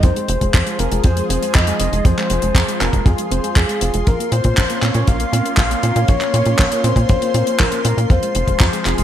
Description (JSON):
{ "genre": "italo disco", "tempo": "119 BPM", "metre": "4/4", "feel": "straight", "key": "F minor", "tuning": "A4 = 440 Hz", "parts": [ { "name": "soft octave-layered synth lead", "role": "melody", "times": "0.0-9.0 s", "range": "Ab4 to F5", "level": "-22 LUFS", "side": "left 2 dB", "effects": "chorus, digital delay" }, { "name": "lush unison pad", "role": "sustained chords", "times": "0.0-9.0 s", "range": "F3 to C6", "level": "-24 LUFS", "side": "equal", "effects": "chorus, phaser" }, { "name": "soft round pluck", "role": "arpeggios", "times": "0.0-9.0 s", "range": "F3 to C4", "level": "-26 LUFS", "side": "right 4 dB", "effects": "chorus, digital delay" }, { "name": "tight sequencer bass", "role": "bass", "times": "0.0-9.0 s", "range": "F1 to Bb2", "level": "-19 LUFS", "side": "equal", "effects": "none" }, { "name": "damped 70s drum kit", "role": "drums", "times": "0.0-9.0 s", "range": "handclaps, hi-hat", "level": "-22 LUFS", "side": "equal", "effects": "gated reverb" }, { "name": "kick drum", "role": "drums", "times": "0.0-8.7 s", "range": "none", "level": "-15 LUFS", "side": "equal", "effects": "none" } ], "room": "light reverb, small room ambience", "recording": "bright 1980s-style digital production", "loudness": "-14 LUFS", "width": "side -11 dB against mid", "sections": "0.0-9.0 A section", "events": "none", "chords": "0.0 Fm; 4.1 Bbmadd9; 8.1 Fm" }